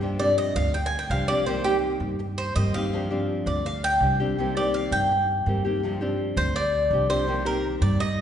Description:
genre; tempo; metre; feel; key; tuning
latin; 165 BPM; 4/4; straight; C minor; A4 = 438 Hz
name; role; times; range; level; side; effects
nylon-string guitar; accompaniment; 0.0-8.0 s; C3 to G4; -28 LUFS; left 2 dB; none
upright bass; bass; 0.0-8.2 s; C2 to G2; -27 LUFS; right 1 dB; none
Cuban tres; arpeggios; 0.2-8.2 s; G4 to Ab5; -25 LUFS; equal; none
room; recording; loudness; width
wet scoring stage reverb, RT60 1.7 s; recorded in a church or concert hall, nothing above 10.7 kHz; -22 LUFS; side -9 dB against mid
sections
0.0-8.2 A section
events
Cuban tres solo 0.0-8.2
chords
0.0 G7sus4; 1.5 Cm7; 2.9 G7sus4; 4.4 Cm7; 5.8 G7sus4; 7.3 Cm7

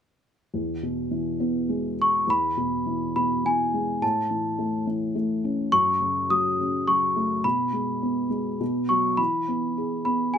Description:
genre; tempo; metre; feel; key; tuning
children's music, lullaby; 104 BPM; 3/4; rubato; E major; A4 = 440 Hz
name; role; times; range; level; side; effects
felt-muted upright piano; accompaniment; 0.5-10.4 s; E2 to G#4; -26 LUFS; equal; none
celesta; melody; 2.0-10.4 s; G#5 to D#6; -23 LUFS; equal; none
room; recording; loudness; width
light reverb; close, detailed microphones; -22 LUFS; side -8 dB against mid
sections
0.5-2.3 A section; 2.3-10.4 B section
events
none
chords
0.5 E; 4.0 A; 5.7 F#m; 7.4 G#m/B; 8.6 B5; 9.2 E

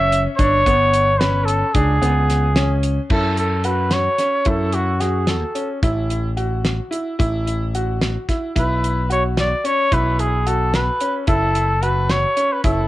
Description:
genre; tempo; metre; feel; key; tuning
progressive instrumental, band music in an uneven meter; 220 BPM (eighths); 5/8; straight; F# minor from 3.1 s; A4 = 442 Hz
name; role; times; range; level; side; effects
warm trumpet; melody; 0.0-5.7, 8.6-12.9 s; F#4 to E5; -19 LUFS; equal; ping-pong delay
bright grand piano; arpeggios; 0.0-12.9 s; B3 to F#4; -24 LUFS; equal; ping-pong delay
modern bright picked electric bass; bass; 0.0-12.9 s; F#1 to F#2; -20 LUFS; equal; none
damped 70s drum kit; drums; 0.1-12.8 s; crash cymbal, hi-hat, kick drum, snare drum; -22 LUFS; equal; none
room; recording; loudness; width
light reverb; worn, warbling old tape, cassette tape, warbly pitch drift; -16 LUFS; side -16 dB against mid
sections
0.0-3.1 A section; 3.1-12.9 B section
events
none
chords
0.4 G; 1.8 C#5; 3.1 F#5; 5.8 A5; 8.6 B5; 11.3 F#m7

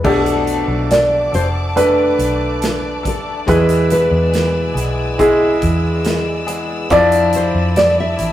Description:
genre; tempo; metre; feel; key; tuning
pop ballad; 70 BPM; 4/4; straight; unclear; A4 = 440 Hz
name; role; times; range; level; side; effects
nylon-string guitar; melody; 0.0-8.3 s; G#4 to E5; -18 LUFS; equal; none
clear concert grand piano; accompaniment; 0.0-8.3 s; B2 to D5; -16 LUFS; equal; none
direct-recorded clean electric guitar; arpeggios; 0.0-8.3 s; E2 to A4; -27 LUFS; left 4 dB; none
vintage muted fingered electric bass; bass; 0.0-8.3 s; F1 to F2; -20 LUFS; equal; none
modern studio drum kit; drums; 0.0-8.3 s; crash cymbal, hi-hat, kick drum, snare drum; -24 LUFS; right 1 dB; none
rich symphonic string section; sustained chords; 0.1-8.3 s; D5 to E6; -28 LUFS; left 1 dB; none
room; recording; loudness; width
wet stone room reverb, RT60 1.0 s; rough rehearsal-room recording, tube saturation; -13 LUFS; side -12 dB against mid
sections
0.1-8.3 A section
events
none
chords
0.1 Bm7b5; 3.5 E; 6.9 Dmadd9

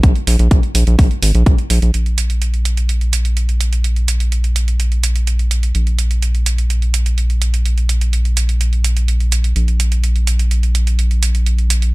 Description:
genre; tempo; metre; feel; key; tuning
melodic techno; 126 BPM; 4/4; straight; unclear; A4 = 441 Hz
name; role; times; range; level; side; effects
round analog bass; bass; 0.0-11.9 s; Ab1 to Bb1; -14 LUFS; equal; sidechain pumping
electronic hi-hat; drums; 0.0-11.9 s; none; -23 LUFS; right 6 dB; overdrive
electronic kick drum; drums; 0.0-1.6 s; none; -12 LUFS; equal; none
room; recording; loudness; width
little or no reverb; none; -13 LUFS; side -22 dB against mid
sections
0.0-1.9 A section; 1.9-11.9 B section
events
none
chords
none

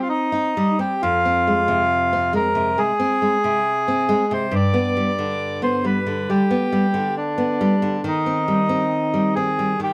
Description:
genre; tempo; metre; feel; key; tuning
romantic duo for bandoneon and classical guitar; 68 BPM; 4/4; rubato; C minor; A4 = 441 Hz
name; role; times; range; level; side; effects
bandoneon; melody; 0.0-9.9 s; D4 to D5; -23 LUFS; equal; none
nylon-string guitar; accompaniment; 0.0-9.9 s; F2 to Eb4; -23 LUFS; equal; none
room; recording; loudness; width
light reverb; close, detailed microphones; -20 LUFS; mono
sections
0.0-9.9 A section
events
none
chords
0.0 Cm; 1.0 Fm; 4.5 G; 8.0 Cm/Eb

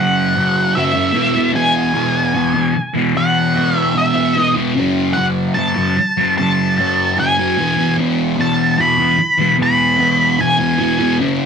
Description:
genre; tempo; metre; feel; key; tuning
rock; 75 BPM; 4/4; straight; unclear; A4 = 440 Hz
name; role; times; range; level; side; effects
octave-fuzz lead guitar; melody; 0.0-11.2 s; E5 to B5; -16 LUFS; equal; distortion
fuzz guitar; riff; 0.0-11.5 s; E2 to F#3; -15 LUFS; equal; distortion, phaser
room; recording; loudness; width
wet small room reverb, RT60 0.5 s; rough rehearsal-room recording; -13 LUFS; side -6 dB against mid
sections
0.0-11.5 A section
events
none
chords
0.0 F#5; 1.1 E; 4.8 F#m; 7.6 E

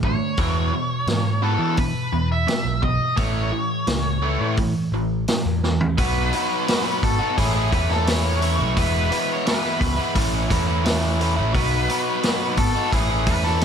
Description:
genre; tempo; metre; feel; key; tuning
classic rock; 86 BPM; 4/4; straight; unclear; A4 = 439 Hz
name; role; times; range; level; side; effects
biting overdriven guitar; riff; 0.0-13.6 s; E2 to F#4; -23 LUFS; equal; none
overdriven picked electric bass; bass; 0.0-13.6 s; E1 to E3; -23 LUFS; equal; none
vintage drum kit; drums; 0.0-13.6 s; hi-hat, kick drum, snare drum, toms; -25 LUFS; equal; none
octave-fuzz lead guitar; melody; 0.1-13.6 s; G#4 to E5; -26 LUFS; equal; distortion
room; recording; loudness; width
little or no reverb; none; -19 LUFS; side -7 dB against mid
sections
0.0-6.0 A section; 6.0-13.6 B section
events
drum fill 5.6-6.0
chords
0.4 E; 3.2 A; 6.0 B; 7.4 A; 8.8 E; 10.2 A; 11.5 B; 12.9 A

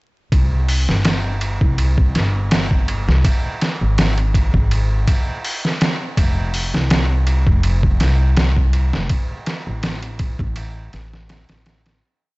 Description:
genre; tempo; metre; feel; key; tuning
trip hop; 82 BPM; 4/4; swing 54% on 16ths; unclear; A4 = 440 Hz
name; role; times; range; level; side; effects
upright bass; bass; 0.3-12.0 s; F1 to C2; -18 LUFS; equal; transformer saturation
trip hop sampler-style drum kit; drums; 0.3-12.0 s; hi-hat, kick drum, ride cymbal, snare drum; -18 LUFS; equal; overdrive
room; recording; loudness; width
little or no reverb; blown-out, overdriven recording, vinyl crackle, overdrive, nothing above 8.0 kHz; -15 LUFS; side -24 dB against mid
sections
0.3-12.0 groove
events
fade-out 8.1-12.0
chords
none

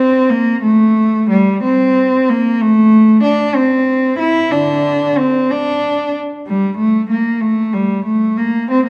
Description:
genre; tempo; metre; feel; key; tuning
classical, baroque-style suite movement for unaccompanied cello; 62 BPM (dotted quarters); 12/8; rubato; unclear; A4 = 438 Hz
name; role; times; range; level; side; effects
dark cello; solo; 0.0-8.9 s; D3 to E4; -14 LUFS; equal; none
room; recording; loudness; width
wet recital hall reverb, RT60 1.5 s; dark, warm production; -14 LUFS; mono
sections
0.0-8.9 A section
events
none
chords
none

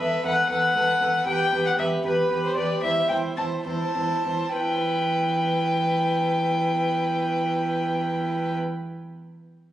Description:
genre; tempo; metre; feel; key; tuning
quick classical-period movement for string quartet; 66-79 BPM (dotted quarters); 6/8; rubato; E minor; A4 = 441 Hz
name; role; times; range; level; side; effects
warm violin; melody; 0.0-8.6 s; B4 to A5; -24 LUFS; left 1 dB; none
rich violin; second line; 0.0-8.6 s; B4 to C5; -30 LUFS; equal; none
dark viola; accompaniment; 0.0-8.6 s; E4 to A4; -30 LUFS; right 3 dB; none
rich cello; bass; 0.0-8.6 s; E2; -30 LUFS; right 2 dB; none
room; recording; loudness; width
wet recital hall reverb, RT60 1.8 s; recorded on a phone in the room, club reverb, compression; -21 LUFS; side -12 dB against mid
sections
0.0-4.6 A section; 4.6-8.0 B section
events
slowing down 0.5-4.6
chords
0.0 B5/E; 1.3 Em; 2.8 Am/E

